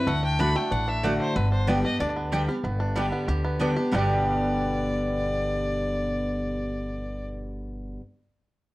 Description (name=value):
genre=bluegrass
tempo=187 BPM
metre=4/4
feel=straight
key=G major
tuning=A4 = 443 Hz
part: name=bluegrass banjo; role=melody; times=0.0-8.0 s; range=D3 to G4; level=-32 LUFS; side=right 1 dB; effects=plate reverb
part: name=clear fiddle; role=melody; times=0.0-7.3 s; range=B4 to B5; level=-30 LUFS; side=left 1 dB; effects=plate reverb
part: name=picked steel-string acoustic guitar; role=accompaniment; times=0.0-8.0 s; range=G2 to G4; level=-28 LUFS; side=equal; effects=none
part: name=upright bass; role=bass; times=0.1-8.0 s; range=G1 to D2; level=-29 LUFS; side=equal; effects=none
part: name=mandolin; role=stabs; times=0.4-8.0 s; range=A3 to G5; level=-31 LUFS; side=right 2 dB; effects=none
room=moderate studio reverb, RT60 0.8 s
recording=worn, warbling old tape, cassette tape, warbly pitch drift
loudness=-23 LUFS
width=side -19 dB against mid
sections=0.0-2.6 A section; 2.6-3.9 B section; 3.9-6.5 C section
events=none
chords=0.1 D; 1.4 G